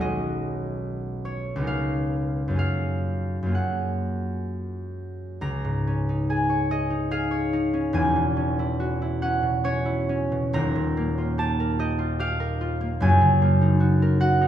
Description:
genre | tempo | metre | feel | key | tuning
classical, solo harp piece | 61-76 BPM | 3/4 | rubato | F# major | A4 = 440 Hz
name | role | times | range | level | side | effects
concert harp | solo | 0.0-14.5 s | Eb1 to Bb5 | -22 LUFS | equal | none
room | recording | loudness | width
wet recital hall reverb, RT60 1.4 s | heard from further back in the room | -22 LUFS | side -10 dB against mid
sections
0.0-5.4 A section; 5.4-14.5 B section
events
none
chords
0.0 B69; 1.7 C#13; 2.6 F#maj9; 5.4 Dbadd9; 8.0 E69; 10.6 Ebadd9; 13.0 Gb69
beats
| 0.01 0.83 1.67 | 2.60 3.54 4.47 | 5.42 6.29 7.12 | 7.95 8.80 9.64 | 10.55 11.39 12.19 | 13.01 13.80

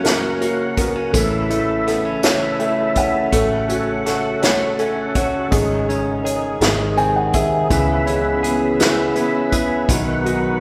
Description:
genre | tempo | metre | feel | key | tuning
six-eight pop ballad | 55 BPM (dotted quarters) | 6/8 | straight | C# minor | A4 = 440 Hz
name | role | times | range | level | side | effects
dark upright piano | accompaniment | 0.0-10.6 s | B2 to G#5 | -23 LUFS | equal | none
overdriven tonewheel organ | sustained chords | 0.0-10.6 s | B#2 to F#4 | -25 LUFS | equal | chorus vibrato, slow rotary speaker
direct-recorded clean electric guitar | arpeggios | 0.0-10.6 s | D#3 to G#4 | -28 LUFS | equal | none
vintage muted fingered electric bass | bass | 0.0-10.6 s | F#1 to C#2 | -30 LUFS | equal | none
unplugged drum kit | drums | 0.0-10.4 s | hi-hat, kick drum, snare drum | -24 LUFS | equal | none
room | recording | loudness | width
wet cathedral reverb, RT60 4.2 s | recorded in a church or concert hall | -18 LUFS | mono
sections
0.0-10.6 A section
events
upright piano fill 2.2-3.3, 6.6-7.7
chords
0.0 F#; 1.1 A; 3.3 F#m/A; 5.5 G#sus4; 6.6 G#; 7.7 C#m7; 9.9 B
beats
0.05 | 1.15 2.24 | 3.33 4.42 | 5.52 6.61 | 7.71 8.80 | 9.89

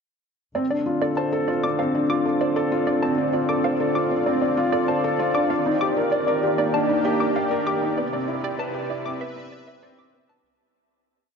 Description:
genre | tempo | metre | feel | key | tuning
piano and strings electronica | 97 BPM | 4/4 | straight | D dorian | A4 = 440 Hz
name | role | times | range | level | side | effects
lush unison pad | sustained chords | 0.6-10.4 s | C3 to E5 | -26 LUFS | left 1 dB | chorus
warbly dusty pluck | arpeggios | 0.6-10.3 s | D5 to D6 | -28 LUFS | right 1 dB | chorus, tape echo
felt-muted upright piano | riff | 0.6-10.5 s | B3 to D5 | -23 LUFS | equal | tape echo
rich symphonic double bass section | bass | 0.6-10.4 s | none | barely audible | none | none
room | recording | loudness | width
wet huge ambient reverb, RT60 7.1 s | dark, warm production, nothing above 7.5 kHz | -20 LUFS | side -6 dB against mid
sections
0.6-10.4 build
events
build-up 0.6-10.4; filter sweep on analog synth pad 0.6-10.4; fade-out 7.2-10.4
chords
0.6 Dm7; 5.5 Ebmaj7; 8.0 Cmaj7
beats
| 0.55 1.17 1.79 2.41 | 3.03 3.65 4.26 4.88 | 5.50 6.12 6.74 7.36 | 7.98 8.60 9.21 9.83

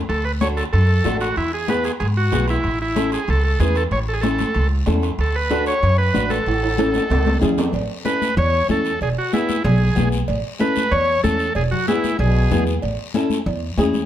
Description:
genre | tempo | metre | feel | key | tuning
latin, cumbia | 188 BPM | 4/4 | straight | A major | A4 = 439 Hz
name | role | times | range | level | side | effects
upright bass | bass | 0.0-14.0 s | E1 to G#2 | -20 LUFS | equal | none
combo organ | melody | 0.1-12.6 s | E4 to C#5 | -22 LUFS | right 1 dB | plate reverb
guiro | percussion | 0.1-14.1 s | none | -36 LUFS | left 6 dB | none
timbales and cowbell | percussion | 0.1-13.9 s | none | -29 LUFS | right 4 dB | none
flamenco guitar | accompaniment | 0.4-14.0 s | B3 to B4 | -23 LUFS | left 1 dB | none
congas | percussion | 0.4-14.1 s | none | -26 LUFS | left 4 dB | none
bright trombone | second line | 12.2-12.6 s | B2 | -28 LUFS | left 4 dB | none
room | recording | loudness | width
moderate studio reverb, RT60 0.8 s | dark, warm production | -17 LUFS | side -11 dB against mid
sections
0.0-7.7 A section; 7.7-14.1 B section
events
drum fill 6.5-7.7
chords
0.1 D; 1.4 E; 2.6 A; 5.2 D; 6.5 A; 9.0 E; 10.3 A; 11.6 E; 12.8 A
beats
| 0.10 0.41 0.73 1.05 | 1.37 1.69 2.01 2.33 | 2.65 2.96 3.28 3.60 | 3.92 4.24 4.55 4.87 | 5.19 5.51 5.83 6.15 | 6.46 6.78 7.10 7.42 | 7.74 8.06 8.37 8.69 | 9.01 9.33 9.65 9.96 | 10.28 10.60 10.92 11.24 | 11.56 11.87 12.19 12.51 | 12.83 13.15 13.47 13.79

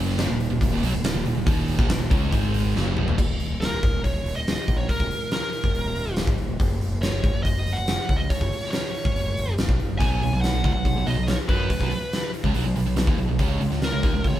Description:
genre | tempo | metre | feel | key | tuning
hard rock | 141 BPM | 4/4 | straight | Eb minor | A4 = 440 Hz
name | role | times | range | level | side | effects
overdriven semi-hollow guitar | riff | 0.0-3.2, 10.0-14.4 s | Eb2 to F#4 | -31 LUFS | left 7 dB | spring reverb
sludgy distorted guitar | riff | 0.0-3.2, 10.0-14.4 s | Eb2 to F#4 | -27 LUFS | right 6 dB | overdrive
growling picked electric bass | bass | 0.0-14.4 s | Eb1 to F#2 | -26 LUFS | equal | overdrive
huge arena drum kit | drums | 0.1-14.3 s | crash cymbal, hi-hat, kick drum, snare drum, toms | -24 LUFS | equal | none
high-gain lead guitar | melody | 3.6-14.4 s | Bb4 to Ab5 | -29 LUFS | right 1 dB | distortion
room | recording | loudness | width
moderate studio reverb, RT60 0.8 s | band playing live in one room | -21 LUFS | side -13 dB against mid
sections
0.0-3.2 A section; 3.2-14.4 B section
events
drum fill 2.8-3.2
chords
0.3 Eb5; 2.3 Ab5; 2.8 Ebm; 3.2 Eb5; 6.6 Gb5; 10.0 B5; 13.4 Db5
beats
0.19 0.61 1.04 | 1.47 1.90 2.32 2.75 | 3.18 3.61 4.04 4.46 | 4.89 5.32 5.75 6.17 | 6.60 7.03 7.46 7.88 | 8.31 8.73 9.16 9.58 | 10.01 10.43 10.86 11.28 | 11.71 12.13 12.55 12.98 | 13.40 13.82 14.24

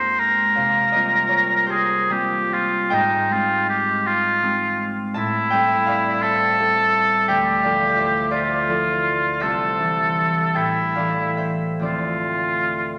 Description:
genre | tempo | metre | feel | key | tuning
classical, impressionist duo for oboe and harp | 45-58 BPM (dotted quarters) | 6/8 | rubato | D minor from 5.2 s | A4 = 440 Hz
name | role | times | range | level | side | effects
clear oboe | melody | 0.0-13.0 s | Eb4 to C5 | -21 LUFS | equal | none
concert harp | accompaniment | 0.0-13.0 s | C2 to A5 | -26 LUFS | equal | none
room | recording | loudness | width
wet scoring stage reverb, RT60 1.9 s | none | -20 LUFS | mono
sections
0.0-13.0 A section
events
none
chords
0.0 Abmaj9/F; 0.6 C7sus4; 2.9 Abmaj7; 5.2 Am7; 7.3 Dmadd9; 9.4 C69; 10.6 A7sus4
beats
| 0.57 1.70 | 2.94 4.07 | 5.16 6.23 | 7.29 8.33 | 9.42 10.57 | 11.85

